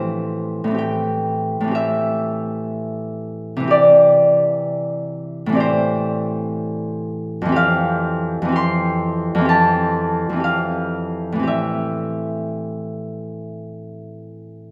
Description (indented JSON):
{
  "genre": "classical, solo harp piece",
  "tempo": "55-65 BPM",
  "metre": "4/4",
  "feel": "rubato",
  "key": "unclear",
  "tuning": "A4 = 442 Hz",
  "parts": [
    { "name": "Celtic harp", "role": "solo", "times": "0.0-14.7 s", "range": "F2 to C6", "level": "-20 LUFS", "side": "equal", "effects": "none" }
  ],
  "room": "wet concert hall reverb, RT60 2.2 s",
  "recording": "recorded in a church or concert hall",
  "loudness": "-19 LUFS",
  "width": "mono",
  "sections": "0.0-14.7 A section",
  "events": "none",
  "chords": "0.0 Am7; 3.7 Cadd9; 5.6 Am7",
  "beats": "0.76 1.75 2.74 | 3.70 4.65 5.60 6.55 | 7.55 8.54 9.47 10.44 | 11.46 12.50 13.52 14.55"
}